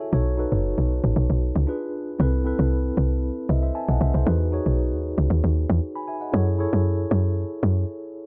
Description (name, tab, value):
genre	amapiano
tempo	116 BPM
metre	4/4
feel	straight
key	E major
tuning	A4 = 440 Hz
part	mellow tine electric piano	accompaniment	0.0-8.3 s	C4 to B5	-30 LUFS	equal	none
part	woody log drum bass	bass	0.1-7.8 s	F#1 to F#2	-23 LUFS	equal	none
room	light reverb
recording	dark, warm production, nothing above 7.7 kHz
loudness	-23 LUFS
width	mono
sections	0.0-8.3 A section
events	tine electric piano fill 3.2-4.3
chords	0.1 B7; 1.7 Ddim7; 2.2 Amadd9/C; 4.3 Emaj9; 6.3 F#m9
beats	| 0.13 0.65 1.17 1.68 | 2.20 2.72 3.23 3.75 | 4.27 4.79 5.30 5.82 | 6.34 6.85 7.37 7.89